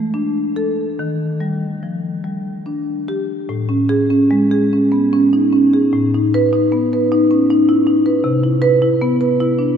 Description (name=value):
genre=classical, contemporary piece for solo marimba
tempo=70-79 BPM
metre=3/4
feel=rubato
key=A lydian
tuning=A4 = 440 Hz
part: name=marimba with medium mallets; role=solo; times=0.0-9.8 s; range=A2 to B4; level=-14 LUFS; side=equal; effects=none
room=wet cathedral reverb, RT60 6.6 s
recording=in a vast, echoing space, nothing above 11.0 kHz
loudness=-14 LUFS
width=side -8 dB against mid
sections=0.0-3.5 A section; 3.5-9.8 B section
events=none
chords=0.0 E7sus4; 1.0 D#maj7; 3.5 Amaj7; 5.9 B7/A; 8.2 Cmaj7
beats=0.13 | 0.98 1.82 2.66 | 3.49 4.31 5.12 | 5.92 6.71 7.48 | 8.24 9.02